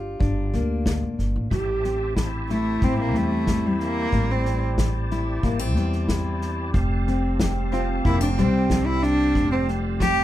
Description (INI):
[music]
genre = acoustic folk duo or small band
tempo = 92 BPM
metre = 4/4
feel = straight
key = unclear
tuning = A4 = 440 Hz
[part]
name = dark clarinet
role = second line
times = 0.0-10.2 s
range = C4 to G4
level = -31 LUFS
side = right 3 dB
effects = none
[part]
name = fingerpicked steel-string acoustic guitar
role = accompaniment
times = 0.0-10.2 s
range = D2 to F4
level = -28 LUFS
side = left 4 dB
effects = none
[part]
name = upright bass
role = bass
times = 0.0-10.2 s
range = F1 to E2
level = -25 LUFS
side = equal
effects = none
[part]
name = unplugged drum kit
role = drums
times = 0.2-10.2 s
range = kick drum, snare drum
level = -27 LUFS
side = equal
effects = none
[part]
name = bright tonewheel organ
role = sustained chords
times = 1.5-10.2 s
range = G4 to A5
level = -36 LUFS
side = right 1 dB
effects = slow rotary speaker, chorus vibrato
[part]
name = warm cello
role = melody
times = 2.5-10.2 s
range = G3 to G4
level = -24 LUFS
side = right 1 dB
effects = none
[sound]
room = little or no reverb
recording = close, detailed microphones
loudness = -20 LUFS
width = side -13 dB against mid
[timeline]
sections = 0.0-10.2 A section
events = cello solo 0.0-10.2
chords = 0.0 Gm7; 1.5 Am7; 6.7 Fadd9